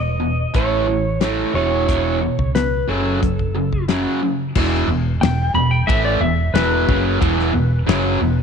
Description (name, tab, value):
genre	classic rock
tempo	90 BPM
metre	4/4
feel	straight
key	unclear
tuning	A4 = 437 Hz
part	clean lap steel guitar	melody	0.0-8.4 s	A4 to B5	-22 LUFS	equal	slapback echo
part	distorted electric guitar	riff	0.0-8.4 s	E2 to A3	-19 LUFS	right 1 dB	distortion
part	woody fretless electric bass	bass	0.0-8.4 s	E1 to C#2	-22 LUFS	right 1 dB	none
part	damped 70s drum kit	drums	0.5-8.0 s	crash cymbal, hi-hat, kick drum, ride cymbal, snare drum	-23 LUFS	left 3 dB	none
room	light reverb, small room ambience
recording	1960s-style stereo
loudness	-16 LUFS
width	side -6 dB against mid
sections	0.0-4.5 A section; 4.5-8.4 B section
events	electric slide guitar solo 4.5-8.4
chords	0.0 E5; 0.5 A; 1.5 E5; 2.9 F#m; 4.5 E5